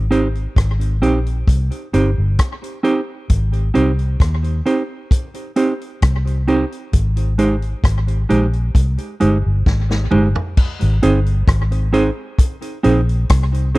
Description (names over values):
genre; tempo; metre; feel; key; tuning
roots reggae; 66 BPM; 4/4; straight; Ab major; A4 = 443 Hz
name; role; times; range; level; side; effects
vintage muted fingered electric bass; bass; 0.0-13.8 s; G1 to Eb2; -17 LUFS; equal; none
mellow electric guitar; accompaniment; 0.1-13.8 s; Ab3 to C5; -19 LUFS; right 2 dB; tremolo, tape echo
vintage drum kit; drums; 0.1-13.8 s; crash cymbal, hi-hat, kick drum, rim click, snare drum, toms; -15 LUFS; equal; none
room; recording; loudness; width
studio reverb; dry, close 1970s-style studio recording; -15 LUFS; side -20 dB against mid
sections
0.0-10.6 A section; 10.6-13.8 B section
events
drum fill 9.7-10.6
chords
0.0 Abmaj7